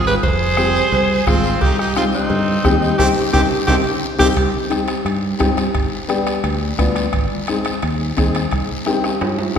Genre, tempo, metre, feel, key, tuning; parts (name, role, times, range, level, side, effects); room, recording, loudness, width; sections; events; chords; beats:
latin, cumbia; 174 BPM; 4/4; straight; C harmonic minor; A4 = 440 Hz
raspy alto saxophone; melody; 0.0-4.3 s; Eb4 to C5; -19 LUFS; right 1 dB
brilliant trumpet; second line; 0.0-4.3 s; C4 to Ab4; -25 LUFS; right 3 dB
dark upright piano; accompaniment; 0.0-9.6 s; B3 to Ab4; -21 LUFS; left 3 dB
fingered electric bass; bass; 0.0-9.6 s; F1 to G2; -22 LUFS; equal
guiro; percussion; 0.1-9.6 s; -32 LUFS; left 4 dB
bombo; percussion; 0.2-9.6 s; -22 LUFS; right 1 dB
congas; percussion; 0.2-9.6 s; -28 LUFS; left 1 dB
cowbell and timbales; percussion; 0.2-9.5 s; -29 LUFS; right 3 dB
wet concert hall reverb, RT60 1.9 s; recorded in a church or concert hall; -15 LUFS; side -7 dB against mid
0.0-4.4 A section; 4.4-9.6 B section
band accent 3.0-4.4; drum fill 3.3-4.4, 8.9-9.6
0.0 Fm; 1.6 Cm; 5.8 G7; 7.1 Ab; 8.5 Cm
| 0.24 0.58 0.93 1.27 | 1.62 1.96 2.31 2.65 | 2.99 3.34 3.68 4.03 | 4.37 4.72 5.06 5.41 | 5.75 6.10 6.45 6.79 | 7.14 7.48 7.83 8.18 | 8.52 8.87 9.21 9.56